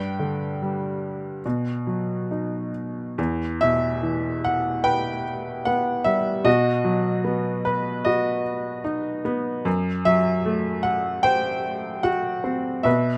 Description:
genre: classical, lyrical solo piano.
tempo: 74 BPM.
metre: 4/4.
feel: uneven beats, rubato.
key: E harmonic minor from 3.2 s.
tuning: A4 = 436 Hz.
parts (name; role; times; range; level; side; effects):
clear upright piano; solo; 0.0-13.2 s; E2 to G5; -24 LUFS; equal; none.
room: light reverb.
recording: close, detailed microphones.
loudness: -24 LUFS.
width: mono.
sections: 0.0-3.2 A section; 3.2-13.2 B section.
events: none.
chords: 0.0 G; 1.4 B; 3.2 Em; 6.5 B; 9.7 F#dim.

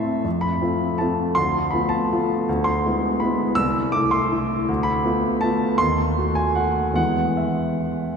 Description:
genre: classical, piano waltz.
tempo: 161 BPM.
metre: 3/4.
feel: uneven beats, rubato.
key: unclear.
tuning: A4 = 440 Hz.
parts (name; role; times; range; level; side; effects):
warm concert grand piano; solo; 0.0-8.2 s; C2 to E6; -19 LUFS; equal; none.
room: wet cathedral reverb, RT60 4.2 s.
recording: none.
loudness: -19 LUFS.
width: side -6 dB against mid.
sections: 0.0-8.2 A section.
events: none.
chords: 0.3 F; 1.4 Bm7b5/D; 2.5 E7/D; 3.6 Am/C; 4.7 Bm7b5/D; 5.8 D#dim7; 7.0 E.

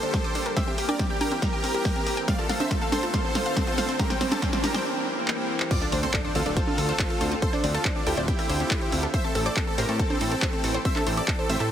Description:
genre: uplifting trance.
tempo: 140 BPM.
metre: 4/4.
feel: straight.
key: D minor.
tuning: A4 = 441 Hz.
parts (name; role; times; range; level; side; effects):
supersaw chords; melody; 0.0-11.7 s; C4 to F5; -29 LUFS; equal; sidechain pumping, ping-pong delay.
wide unison pluck; second line; 0.0-11.7 s; C5 to F6; -36 LUFS; right 1 dB; sidechain pumping, tape echo.
lush unison pad; sustained chords; 0.0-11.6 s; D3 to G4; -33 LUFS; equal; chorus, sidechain pumping.
wide unison pluck; arpeggios; 0.0-11.7 s; C4 to D6; -33 LUFS; left 2 dB; sidechain pumping, tape echo.
punchy analog drum machine; drums; 0.0-11.7 s; congas, crash cymbal, handclaps, hi-hat, snare drum; -30 LUFS; right 1 dB; none.
riser and impact; sound effects; 1.2-7.4 s; none; -37 LUFS; equal; none.
electronic kick drum; drums; 0.1-11.4 s; none; -28 LUFS; equal; none.
fat analog bass; bass; 5.9-11.7 s; D1 to A2; -28 LUFS; equal; sidechain pumping.
room: light reverb.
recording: heavily compressed radio sound.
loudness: -23 LUFS.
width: side -10 dB against mid.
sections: 0.0-5.7 A section; 5.7-11.7 B section.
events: build-up 0.0-5.7; drum fill 0.0-4.9, 5.3-5.7; filter sweep on synth arpeggio sound 0.0-5.7; break 4.9-5.7; drop 5.7-11.7; impact 5.7-7.4.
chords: 0.0 Gm; 0.6 C7; 2.3 Dm7; 4.0 C7; 5.7 Dm7; 9.1 Am7.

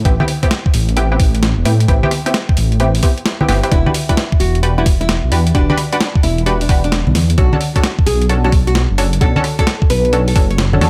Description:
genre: UK garage, two-step garage.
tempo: 131 BPM.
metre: 4/4.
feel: swing 65% on 16ths.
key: E minor.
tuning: A4 = 440 Hz.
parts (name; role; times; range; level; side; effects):
dark detuned saw bass; bass; 0.0-10.9 s; E1 to A2; -17 LUFS; equal; none.
punchy chord stab; stabs; 0.1-10.9 s; B3 to B4; -22 LUFS; equal; chorus, digital delay.
boom bap sampler-style drum kit; drums; 0.1-10.9 s; congas, hi-hat, rim click, snare drum; -22 LUFS; equal; studio reverb.
electronic kick drum; drums; 0.1-10.5 s; none; -15 LUFS; equal; studio reverb.
nylon-string guitar; melody; 3.7-10.6 s; D4 to C#5; -24 LUFS; equal; delay.
room: digital ambience.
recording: none.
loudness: -14 LUFS.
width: mono.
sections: 0.0-10.9 A section.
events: none.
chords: 0.0 Am9; 3.7 Em9; 7.4 Bm9.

